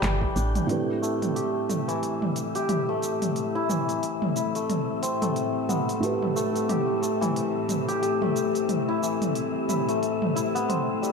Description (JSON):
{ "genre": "organic downtempo", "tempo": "90 BPM", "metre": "4/4", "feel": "swing 58% on 16ths", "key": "A minor", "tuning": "A4 = 437 Hz", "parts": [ { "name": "bowed-like drone", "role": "sustained chords", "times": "2.7-11.1 s", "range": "A2 to G5", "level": "-30 LUFS", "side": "left 3 dB", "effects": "built-in reverb, sidechain pumping" }, { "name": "santur", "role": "arpeggios", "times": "0.0-11.1 s", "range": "E3 to G4", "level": "-28 LUFS", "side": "left 2 dB", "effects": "low-pass filter, digital delay" }, { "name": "woody FM bass", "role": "bass", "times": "0.0-0.6 s", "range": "G1 to A1", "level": "-26 LUFS", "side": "equal", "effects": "none" }, { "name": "organic electronic drum kit", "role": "drums", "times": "0.0-11.1 s", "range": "handclaps, hi-hat, shaker, toms", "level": "-30 LUFS", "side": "right 2 dB", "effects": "overdrive" }, { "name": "wind-like tuned noise texture", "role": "texture", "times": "0.0-11.1 s", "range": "E5 to G5", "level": "-35 LUFS", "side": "left 4 dB", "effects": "built-in reverb" }, { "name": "congas", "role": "percussion", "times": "0.4-0.5 s", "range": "none", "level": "barely audible", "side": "none", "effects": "none" }, { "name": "felt-muted upright piano", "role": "accompaniment", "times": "0.7-11.1 s", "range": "A2 to B4", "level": "-32 LUFS", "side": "right 4 dB", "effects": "sidechain pumping, digital delay" } ], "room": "moderate echo chamber reverb, RT60 1.6 s", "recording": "none", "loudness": "-24 LUFS", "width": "side -4 dB against mid", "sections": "0.7-11.1 A section", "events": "none", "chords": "0.0 A7(no3); 0.7 Am7" }